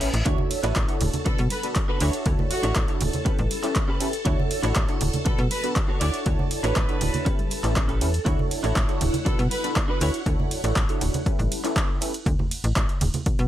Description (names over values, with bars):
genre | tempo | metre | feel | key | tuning
filtered disco house | 120 BPM | 4/4 | straight | D major | A4 = 441 Hz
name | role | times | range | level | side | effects
funky polysynth comp | accompaniment | 0.0-12.1 s | B3 to C#5 | -30 LUFS | right 1 dB | chorus, phaser, sidechain pumping
phased string machine | sustained chords | 0.0-12.3 s | E4 to E6 | -35 LUFS | left 1 dB | ensemble chorus, phaser, sidechain pumping
direct-recorded clean electric guitar | riff | 0.0-10.2 s | C#4 to C#5 | -32 LUFS | right 2 dB | ensemble chorus, sidechain pumping
slap-like FM bass | bass | 0.0-13.5 s | D1 to B2 | -25 LUFS | equal | sidechain pumping
punchy analog drum machine | drums | 0.0-13.5 s | handclaps, hi-hat, ride cymbal | -30 LUFS | right 1 dB | overdrive, sidechain pumping on hats, sidechain pumping on cymbals
maracas and congas | percussion | 0.0-13.5 s | none | -31 LUFS | right 3 dB | sidechain pumping on perc
electronic kick drum | drums | 0.3-13.4 s | none | -24 LUFS | equal | overdrive
clear horn section | melody | 1.3-10.1 s | F#4 to D5 | -32 LUFS | equal | vintage 12-bit sampler grit, sidechain pumping, digital delay
room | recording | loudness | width
little or no reverb | none | -21 LUFS | side -12 dB against mid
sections
0.0-13.5 A section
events
none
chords
0.3 Dmaj9; 1.3 Bm7; 2.0 Dmaj9; 3.3 A9; 4.3 Dmaj9; 5.3 Bm7; 6.0 Dmaj9; 7.3 A9; 8.3 Dmaj9; 9.3 Bm7; 10.0 Dmaj9; 11.3 A9; 12.3 D5